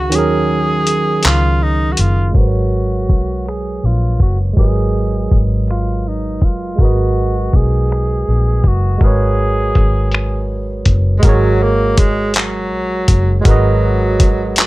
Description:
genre	slow six-eight R&B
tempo	54 BPM (dotted quarters)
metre	6/8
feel	straight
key	G# dorian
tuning	A4 = 440 Hz
part	breathy tenor saxophone	melody	0.0-14.7 s	F#3 to G#4	-20 LUFS	right 1 dB	none
part	barky tine electric piano	accompaniment	0.0-14.7 s	D#3 to E#5	-20 LUFS	right 3 dB	none
part	vintage muted fingered electric bass	bass	0.0-14.7 s	F#1 to D#2	-16 LUFS	equal	none
part	dusty soul sampler-style drum kit	drums	0.1-14.7 s	finger snaps, handclaps, hi-hat, kick drum	-12 LUFS	equal	none
room	little or no reverb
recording	low-pass filter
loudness	-12 LUFS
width	side -18 dB against mid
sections	0.0-2.3 A section; 2.3-11.2 B section; 11.2-14.7 A section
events	kick muted 0.1-2.3; filter sweep 2.3-11.2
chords	0.0 D#m11; 2.3 G#m11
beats	| 0.12 1.23 | 2.34 3.46 | 4.57 5.68 | 6.79 7.90 | 9.01 10.12 | 11.23 12.34 | 13.46 14.57

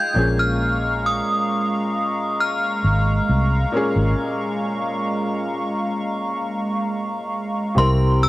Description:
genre	R&B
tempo	67 BPM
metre	4/4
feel	straight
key	unclear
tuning	A4 = 439 Hz
part	synth chime	melody	0.0-8.3 s	C6 to G6	-23 LUFS	equal	ensemble chorus, tremolo, cassette tape
part	clear grand piano	accompaniment	0.0-8.3 s	Bb2 to Bb4	-27 LUFS	left 2 dB	plate reverb
part	hollow soft pad	sustained chords	0.0-8.3 s	Ab3 to Eb6	-24 LUFS	right 1 dB	chorus
part	vintage muted fingered electric bass	bass	0.2-8.3 s	Ab1 to C2	-19 LUFS	equal	none
room	light reverb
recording	home recording on cassette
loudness	-19 LUFS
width	side -18 dB against mid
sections	0.0-7.8 A section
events	break 4.2-7.8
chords	0.2 Bbm7; 7.8 C7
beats	| 0.60 1.50 2.40 3.29 | 4.19 5.08 5.98 6.87 | 7.77

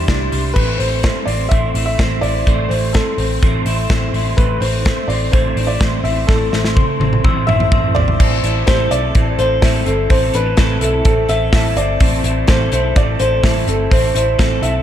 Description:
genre	jangly indie pop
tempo	126 BPM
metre	4/4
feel	straight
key	A minor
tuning	A4 = 440 Hz
part	clear upright piano	melody	0.0-14.8 s	A4 to E5	-20 LUFS	left 1 dB	ping-pong delay
part	clean electric guitar	accompaniment	0.0-14.8 s	A2 to C5	-25 LUFS	right 4 dB	ensemble chorus
part	electric guitar through a small old amp	arpeggios	0.0-14.8 s	G3 to A4	-23 LUFS	left 1 dB	none
part	vintage muted picked electric bass	bass	0.0-14.8 s	G1 to C2	-19 LUFS	equal	none
part	modern studio drum kit	drums	0.1-14.7 s	crash cymbal, hi-hat, kick drum, snare drum, toms	-16 LUFS	equal	none
part	glockenspiel with soft plastic mallets	second line	6.8-8.2 s	C6 to E6	-27 LUFS	left 6 dB	none
room	light reverb, studio ambience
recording	none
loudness	-13 LUFS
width	side -10 dB against mid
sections	0.6-8.2 A section; 8.2-14.8 B section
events	drum fill 6.3-8.2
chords	0.0 Cadd9; 0.6 Am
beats	0.09 | 0.57 1.04 1.52 2.00 | 2.48 2.95 3.43 3.91 | 4.38 4.86 5.34 5.81 | 6.29 6.77 7.24 7.72 | 8.20 8.67 9.15 9.62 | 10.10 10.58 11.05 11.53 | 12.00 12.48 12.96 13.43 | 13.91 14.38

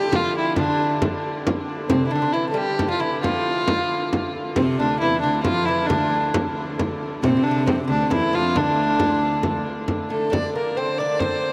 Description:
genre	medieval dance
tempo	90 BPM (dotted quarters)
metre	6/8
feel	straight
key	D minor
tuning	A4 = 441 Hz
part	dark fiddle	melody	0.0-11.5 s	C4 to D5	-24 LUFS	equal	tape echo
part	lute	second line	0.0-11.5 s	C3 to D4	-33 LUFS	equal	none
part	warm hurdy-gurdy	drone	0.0-11.5 s	D3	-34 LUFS	equal	none
part	frame drum	percussion	0.1-11.4 s	none	-29 LUFS	equal	none
part	rich viola da gamba	second line	4.6-9.7 s	D2 to C3	-31 LUFS	equal	none
room	wet huge ambient reverb, RT60 7.9 s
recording	in a vast, echoing space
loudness	-22 LUFS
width	mono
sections	0.0-9.9 A section; 9.9-11.5 B section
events	none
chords	none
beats	| 0.57 1.24 | 1.91 2.58 | 3.24 3.91 | 4.57 5.24 | 5.90 6.56 | 7.23 7.89 | 8.55 9.21 | 9.87 10.53 | 11.19

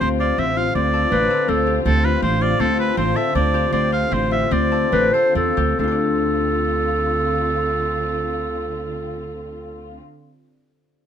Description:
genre	contemporary instrumental, chamber music in an uneven meter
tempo	135-164 BPM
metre	5/4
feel	straight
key	D minor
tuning	A4 = 439 Hz
part	clear oboe	melody	0.0-5.1 s	A4 to F5	-22 LUFS	right 2 dB	none
part	dark symphonic string section	sustained chords	0.0-10.0 s	D3 to F4	-28 LUFS	left 1 dB	none
part	concert harp	arpeggios	0.0-10.1 s	C4 to D5	-23 LUFS	left 6 dB	none
part	upright bass	bass	0.0-10.0 s	A1 to E2	-23 LUFS	right 2 dB	none
part	warm clarinet	second line	1.1-1.8, 4.9-10.0 s	A4 to C5	-21 LUFS	right 1 dB	none
room	light reverb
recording	close, detailed microphones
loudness	-17 LUFS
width	side -8 dB against mid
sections	0.0-5.8 A section; 5.8-10.2 B section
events	slowing down 2.6-5.8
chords	0.0 Dm7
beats	| 0.02 0.39 0.76 1.12 1.49 | 1.86 2.23 2.60 2.97 3.35 | 3.73 4.12 4.52 4.93 5.35 | 5.79 6.23 6.67 7.10 7.54 | 7.97 8.41 8.84 9.28 9.72

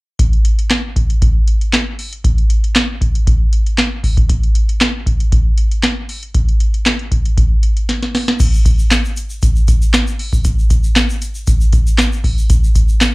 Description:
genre	funk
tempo	117 BPM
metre	4/4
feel	straight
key	none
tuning	none
part	booming analog drum machine	drums	0.2-13.1 s	crash cymbal, handclaps, hi-hat, kick drum, snare drum	-12 LUFS	equal	none
part	tube shaker	percussion	8.4-13.1 s	none	-32 LUFS	left 1 dB	none
room	little or no reverb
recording	live gig heard through the venue's PA, club reverb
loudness	-12 LUFS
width	side -23 dB against mid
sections	0.2-8.4 A section; 8.4-13.1 B section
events	drum fill 7.9-8.4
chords	none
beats	| 0.19 0.70 1.22 1.73 | 2.24 2.76 3.27 3.78 | 4.29 4.81 5.32 5.83 | 6.34 6.86 7.37 7.88 | 8.40 8.91 9.42 9.94 | 10.45 10.96 11.47 11.99 | 12.50 13.01

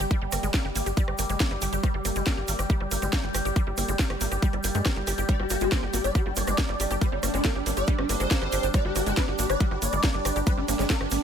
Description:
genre	psychedelic trance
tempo	139 BPM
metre	4/4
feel	straight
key	G phrygian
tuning	A4 = 439 Hz
part	overtone-sweeping drone	sustained chords	0.0-11.2 s	G3 to G4	-33 LUFS	right 1 dB	chorus, built-in reverb, sidechain pumping
part	wide unison pluck	riff	0.0-11.2 s	G3 to G4	-33 LUFS	equal	auto-pan, sidechain pumping, ping-pong delay
part	tight sequencer bass	bass	0.0-11.2 s	G1 to G2	-30 LUFS	equal	none
part	garage drum kit	drums	0.0-11.2 s	hi-hat, rim click, snare drum	-32 LUFS	equal	overdrive
part	egg shaker	percussion	0.0-11.2 s	none	-36 LUFS	right 5 dB	none
part	warbly tape-like pad	texture	0.0-11.2 s	G4 to G5	-39 LUFS	left 1 dB	chorus, built-in reverb, sidechain pumping
part	electronic kick drum	drums	0.1-11.0 s	none	-24 LUFS	equal	overdrive
part	swarming rave lead	melody	5.3-11.2 s	D4 to D5	-29 LUFS	left 1 dB	chorus, phaser, sidechain pumping, tape echo
room	little or no reverb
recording	none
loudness	-23 LUFS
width	side -8 dB against mid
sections	0.0-11.2 A section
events	none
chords	0.0 G5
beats	| 0.11 0.54 0.97 1.40 | 1.83 2.27 2.70 3.13 | 3.56 3.99 4.42 4.86 | 5.29 5.72 6.15 6.58 | 7.01 7.45 7.88 8.31 | 8.74 9.17 9.60 10.04 | 10.47 10.90

